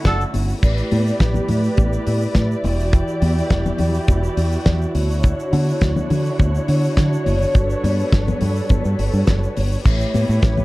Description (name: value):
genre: disco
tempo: 104 BPM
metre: 4/4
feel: straight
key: unclear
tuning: A4 = 440 Hz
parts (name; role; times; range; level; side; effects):
- dark studio string section; sustained chords; 0.0-10.6 s; D3 to D5; -23 LUFS; equal; none
- damped 70s drum kit; drums; 0.0-10.6 s; crash cymbal, hi-hat, kick drum, snare drum; -19 LUFS; equal; none
- tube shaker; percussion; 0.0-10.6 s; none; -46 LUFS; right 6 dB; none
- fingered electric bass; bass; 0.1-10.6 s; E1 to D3; -19 LUFS; equal; none
- congas; percussion; 0.3-10.6 s; none; -28 LUFS; left 3 dB; none
room: small room ambience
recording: dark, warm production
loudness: -16 LUFS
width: side -19 dB against mid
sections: 0.6-9.9 A section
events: none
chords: 0.0 Dmaj7; 0.6 A9sus4; 2.6 Em9; 5.0 Dmaj9; 7.6 Gmaj9#11; 9.9 A9